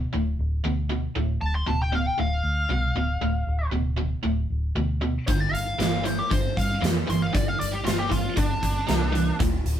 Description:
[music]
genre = blues rock power trio and southern rock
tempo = 116 BPM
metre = 4/4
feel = straight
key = unclear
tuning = A4 = 442 Hz
[part]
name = biting overdriven guitar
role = riff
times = 0.0-9.8 s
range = D2 to E3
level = -28 LUFS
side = right 2 dB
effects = none
[part]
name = vintage muted fingered electric bass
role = bass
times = 0.0-9.8 s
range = D1 to G2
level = -26 LUFS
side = equal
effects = none
[part]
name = biting lead guitar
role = melody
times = 1.4-9.4 s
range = D4 to C6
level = -28 LUFS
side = left 1 dB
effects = wah, overdrive
[part]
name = big rock drum kit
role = drums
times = 5.3-9.8 s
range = hi-hat, kick drum, snare drum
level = -26 LUFS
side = equal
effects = none
[sound]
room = light reverb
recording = band playing live in one room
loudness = -22 LUFS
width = side -10 dB against mid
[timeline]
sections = 0.0-9.8 A section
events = none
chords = 0.0 Dm; 5.3 G5

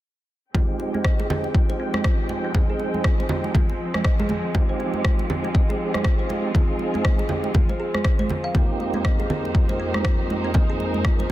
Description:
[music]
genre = afro house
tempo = 120 BPM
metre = 4/4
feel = swing 59% on 16ths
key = F minor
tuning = A4 = 440 Hz
[part]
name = warm studio string section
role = sustained chords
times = 0.5-11.3 s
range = F2 to G5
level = -31 LUFS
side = equal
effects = sidechain pumping, low-pass filter
[part]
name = kalimba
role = arpeggios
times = 0.5-11.3 s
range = C4 to F5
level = -30 LUFS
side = left 1 dB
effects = sidechain pumping, low-pass filter, tape echo
[part]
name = mellow tonewheel organ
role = stabs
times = 0.5-11.3 s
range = Ab3 to Ab4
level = -29 LUFS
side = right 3 dB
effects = chorus vibrato, fast rotary speaker, sidechain pumping, low-pass filter, tape echo
[part]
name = electronic kick drum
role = drums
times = 0.5-11.2 s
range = none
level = -20 LUFS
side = equal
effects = none
[part]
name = congas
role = percussion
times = 0.5-11.3 s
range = none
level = -28 LUFS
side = right 2 dB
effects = none
[part]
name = electronic rim click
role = drums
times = 1.0-11.2 s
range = none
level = -30 LUFS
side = equal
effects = none
[sound]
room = small room ambience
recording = dense, heavily limited modern master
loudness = -20 LUFS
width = side -14 dB against mid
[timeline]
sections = 0.5-11.3 A section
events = filter sweep on tonewheel organ 0.5-11.3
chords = 0.5 Fm7; 8.5 Abmaj7/F

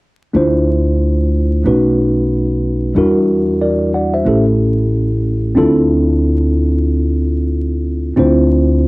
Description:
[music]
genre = hip hop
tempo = 92 BPM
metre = 4/4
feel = swing 61% on 16ths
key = D minor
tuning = A4 = 440 Hz
[part]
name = mellow tine electric piano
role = accompaniment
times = 0.3-8.9 s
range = G3 to F#5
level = -14 LUFS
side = equal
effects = medium stereo tremolo, cassette tape
[part]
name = upright bass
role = bass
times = 0.3-8.9 s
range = A1 to E2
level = -16 LUFS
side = equal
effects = none
[sound]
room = moderate studio reverb, RT60 0.6 s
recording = home recording on cassette, vinyl crackle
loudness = -12 LUFS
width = side -23 dB against mid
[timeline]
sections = 0.3-8.9 A section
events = none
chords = 0.3 Dm7; 1.6 B7; 3.0 Em7b5; 4.3 A7; 5.6 Dm7

